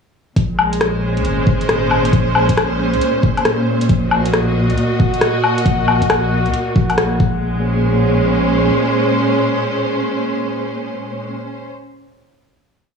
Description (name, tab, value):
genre	future garage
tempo	136 BPM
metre	4/4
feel	swing 64% on 16ths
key	Bb minor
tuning	A4 = 439 Hz
part	clear studio string section	sustained chords	0.4-11.7 s	Bb2 to Eb5	-17 LUFS	right 1 dB	sidechain pumping
part	soft dub sub bass	bass	0.4-8.7 s	Ab1 to Db2	-20 LUFS	equal	sidechain pumping
part	electronic kick drum	drums	0.4-7.3 s	none	-16 LUFS	equal	none
part	garage drum kit	drums	0.4-7.1 s	hi-hat, rim click, woodblock	-18 LUFS	left 3 dB	none
part	drifting glass-harmonics texture	texture	4.3-7.4 s	Gb4 to Gb5	-24 LUFS	left 2 dB	chorus, built-in reverb
room	light reverb, digital ambience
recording	cassette tape, studio ambience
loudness	-14 LUFS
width	side -6 dB against mid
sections	0.4-7.4 groove; 7.4-11.0 final chord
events	band accent 7.0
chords	0.4 Bbm9; 3.9 Ebm/Bb; 7.2 Gbadd9/Bb; 7.4 Bbm9